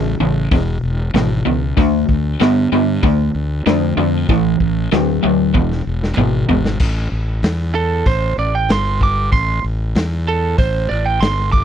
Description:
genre	blues rock power trio and southern rock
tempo	95 BPM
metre	4/4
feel	straight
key	A minor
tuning	A4 = 442 Hz
part	crunchy overdriven guitar	riff	0.0-6.8 s	E2 to B3	-16 LUFS	left 1 dB	none
part	fuzz fingered electric bass	bass	0.0-11.6 s	E1 to G2	-19 LUFS	equal	overdrive
part	raw garage drum kit	drums	0.5-11.6 s	crash cymbal, hi-hat, kick drum, snare drum, toms	-19 LUFS	equal	none
part	lightly driven lead guitar	second line	7.8-11.6 s	A4 to D6	-18 LUFS	right 6 dB	none
room	little or no reverb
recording	dry, close 1970s-style studio recording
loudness	-14 LUFS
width	side -9 dB against mid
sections	0.0-6.8 A section; 6.8-11.6 B section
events	drum fill 5.5-6.8; lead electric guitar solo 6.8-11.6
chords	0.0 E; 1.8 Dm; 4.3 A5; 5.5 E; 6.8 N.C.; 7.4 Esus4; 8.1 Am; 8.7 G5; 9.3 Am; 10.0 Esus4; 10.6 Am

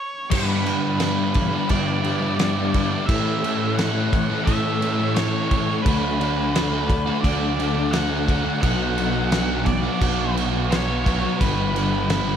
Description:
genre	rock, shoegaze and dream pop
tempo	87 BPM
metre	4/4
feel	straight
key	unclear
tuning	A4 = 439 Hz
part	octave-fuzz lead guitar	melody	0.0-12.4 s	B4 to F#5	-28 LUFS	equal	distortion, analog delay
part	glassy FM pad	sustained chords	1.2-12.4 s	D4 to D6	-34 LUFS	left 3 dB	ensemble chorus, built-in reverb
part	direct-recorded clean electric guitar	arpeggios	0.3-12.4 s	E3 to D4	-35 LUFS	right 9 dB	none
part	biting overdriven guitar	riff	0.3-12.4 s	G2 to A4	-28 LUFS	right 11 dB	reverse reverb
part	raw garage guitar	riff	0.3-12.4 s	G2 to D4	-30 LUFS	right 1 dB	overdrive
part	thick fuzz guitar	riff	0.3-12.4 s	G2 to D4	-27 LUFS	left 10 dB	distortion, wide subtle chorus
part	fuzz fingered electric bass	bass	0.3-12.4 s	G1 to A2	-26 LUFS	equal	overdrive
part	loose indie drum kit	drums	0.3-12.3 s	crash cymbal, kick drum, snare drum	-25 LUFS	equal	none
room	light reverb, small room ambience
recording	none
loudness	-19 LUFS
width	side -8 dB against mid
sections	0.3-12.4 A section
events	stop 0.0-0.3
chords	0.3 G6; 3.1 A; 5.9 D; 8.6 Bmadd9; 11.4 G6

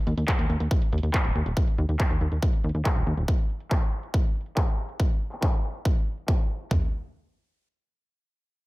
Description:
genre	uplifting trance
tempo	140 BPM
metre	4/4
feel	straight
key	unclear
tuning	A4 = 440 Hz
part	plucky analog bass	bass	0.1-3.2 s	Eb1 to Eb2	-25 LUFS	equal	sidechain pumping
part	punchy analog drum machine	drums	0.1-6.7 s	handclaps, hi-hat	-33 LUFS	equal	low-pass filter on snare, sidechain pumping on hats, low-pass filter on hats, sidechain pumping on perc, low-pass filter on perc, low-pass filter on room
part	big-room dance drum kit	drums	0.3-6.8 s	kick drum, toms	-24 LUFS	equal	none
room	little or no reverb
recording	none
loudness	-23 LUFS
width	side -20 dB against mid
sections	0.0-6.7 A section; 6.7-8.7 B section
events	filter sweep on drum 0.0-6.7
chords	none

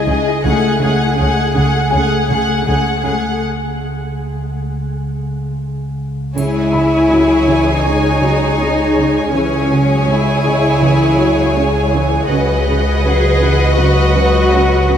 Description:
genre	cinematic, suspense film score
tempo	81 BPM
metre	4/4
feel	straight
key	C# minor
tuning	A4 = 440 Hz
part	clear studio violin section	melody	0.0-15.0 s	D#5 to G#5	-23 LUFS	left 1 dB	none
part	warm symphonic violin section	second line	0.0-15.0 s	G#4 to D#5	-20 LUFS	right 1 dB	none
part	dark symphonic viola section	accompaniment	0.0-15.0 s	E3 to A3	-21 LUFS	left 4 dB	none
part	flickering grainy texture	sustained chords	0.0-15.0 s	E4 to B5	-24 LUFS	equal	built-in reverb
part	metallic inharmonic drone	drone	0.0-15.0 s	C#2	-22 LUFS	equal	chorus, built-in reverb
part	clear baby grand piano	texture	0.0-15.0 s	G#4 to D#6	-28 LUFS	left 2 dB	none
part	warm symphonic cello section	riff	0.1-15.0 s	C#3 to C#4	-23 LUFS	right 4 dB	none
part	dark symphonic double bass section	bass	0.1-15.0 s	C#2	-18 LUFS	equal	none
part	warm chamber cello section	bass	0.1-15.0 s	C#3 to G#4	-17 LUFS	left 1 dB	none
part	triangle	percussion	6.4-7.8 s	none	-39 LUFS	left 1 dB	none
room	wet cathedral reverb, RT60 5.4 s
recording	in a vast, echoing space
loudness	-12 LUFS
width	side -9 dB against mid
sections	0.0-6.4 A section; 6.4-15.0 B section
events	break 3.4-6.4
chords	0.4 F#madd9/C#; 6.4 C#m; 12.3 B/C#

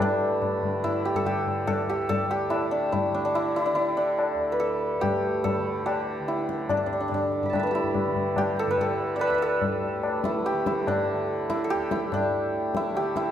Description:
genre	indian classical, Hindustani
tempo	144 BPM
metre	4/4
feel	straight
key	D raga durga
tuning	A4 = 441 Hz
part	santur	melody	0.0-13.3 s	D4 to D6	-25 LUFS	equal	none
part	tanpura	drone	0.0-13.3 s	D2 to D3	-36 LUFS	right 2 dB	none
part	tabla	percussion	0.0-13.3 s	none	-30 LUFS	left 4 dB	none
room	moderate recital hall reverb, RT60 1.4 s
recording	none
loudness	-24 LUFS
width	side -10 dB against mid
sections	0.0-13.3 A section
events	none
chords	none

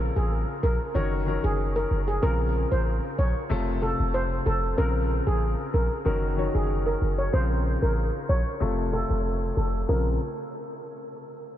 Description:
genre	dancehall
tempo	94 BPM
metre	4/4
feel	straight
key	Bb harmonic minor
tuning	A4 = 440 Hz
part	clear grand piano	accompaniment	0.0-10.2 s	C3 to Db5	-31 LUFS	left 3 dB	low-pass filter
part	warm 808-style bass	bass	0.0-10.2 s	F1 to Bb1	-26 LUFS	equal	none
part	steel pan	melody	0.2-10.2 s	Ab4 to Db5	-29 LUFS	right 1 dB	low-pass filter, ping-pong delay
room	light reverb, small room ambience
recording	none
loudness	-23 LUFS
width	side -12 dB against mid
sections	0.0-9.9 A section; 9.9-11.6 B section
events	filter sweep 0.0-9.9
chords	0.0 Bbmadd9; 1.0 Gb6; 2.2 Bbmadd9; 3.5 F; 4.8 Bbmadd9; 6.1 Gb6; 7.3 Bbmadd9; 8.6 F; 9.9 Bbmadd9

